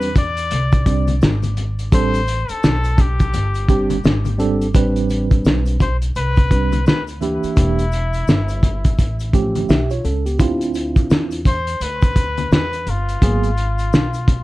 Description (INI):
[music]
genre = hip hop, jazz-hop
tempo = 85 BPM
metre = 4/4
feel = swing 61% on 16ths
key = A minor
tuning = A4 = 438 Hz
[part]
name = trumpet with straight mute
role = melody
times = 0.0-14.4 s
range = E4 to D5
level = -25 LUFS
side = left 3 dB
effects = analog delay
[part]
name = tine electric piano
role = accompaniment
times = 0.0-13.5 s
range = E3 to E5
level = -20 LUFS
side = right 3 dB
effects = medium stereo tremolo
[part]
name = upright bass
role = bass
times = 0.0-14.4 s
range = E1 to E2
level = -21 LUFS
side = equal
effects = none
[part]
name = cloth-damped thuddy drum kit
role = drums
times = 0.0-14.4 s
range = hi-hat, kick drum, snare drum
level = -16 LUFS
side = equal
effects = none
[part]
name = tube shaker and congas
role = percussion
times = 0.0-14.4 s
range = none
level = -31 LUFS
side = left 6 dB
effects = none
[sound]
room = light reverb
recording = dark, warm production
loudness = -15 LUFS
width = side -18 dB against mid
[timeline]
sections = 0.0-4.7 A section; 4.7-14.4 B section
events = muted trumpet solo 0.0-4.7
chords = 0.0 Am11; 7.6 Em7b5; 9.0 A7b13; 10.4 Dm9; 13.2 G#m9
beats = 0.51 1.22 | 1.93 2.63 3.34 4.04 | 4.75 5.46 6.16 6.87 | 7.57 8.28 8.98 9.69 | 10.40 11.10 11.81 12.51 | 13.22 13.93